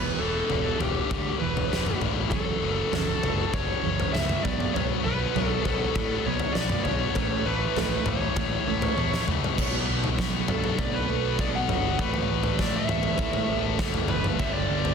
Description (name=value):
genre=quiet-loud alternative rock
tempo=99 BPM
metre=4/4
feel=straight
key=B minor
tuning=A4 = 440 Hz
part: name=high-gain lead guitar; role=melody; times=0.0-14.9 s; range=G4 to F#5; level=-30 LUFS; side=right 1 dB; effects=distortion, digital delay
part: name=fingerpicked steel-string acoustic guitar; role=arpeggios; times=0.0-14.4 s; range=E2 to A4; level=-34 LUFS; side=right 12 dB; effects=none
part: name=scooped high-gain guitar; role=riff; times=0.0-14.9 s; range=E2 to B3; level=-30 LUFS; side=left 14 dB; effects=distortion
part: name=fuzz picked electric bass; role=bass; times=0.0-14.9 s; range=E1 to A2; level=-31 LUFS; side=equal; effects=overdrive
part: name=big rock drum kit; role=drums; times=0.5-14.9 s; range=crash cymbal, kick drum, snare drum, toms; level=-28 LUFS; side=equal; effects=soft clipping on kick, soft clipping on snare
part: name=thick fuzz guitar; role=riff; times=14.4-14.9 s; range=G2 to G4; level=-34 LUFS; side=right 13 dB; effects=distortion
room=small room ambience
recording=dense, heavily limited modern master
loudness=-23 LUFS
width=side -6 dB against mid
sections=0.0-9.6 A section; 9.6-14.9 B section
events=drum fill 9.0-9.6; lead electric guitar solo 9.6-14.9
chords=0.0 Em; 2.3 F#m7; 4.4 B5; 7.2 A; 9.6 Bm7; 12.0 Asus2; 14.4 G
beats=0.51 1.11 1.72 | 2.32 2.93 3.53 4.14 | 4.74 5.35 5.95 6.55 | 7.16 7.76 8.37 8.97 | 9.57 10.18 10.78 11.38 | 11.99 12.59 13.19 13.79 | 14.40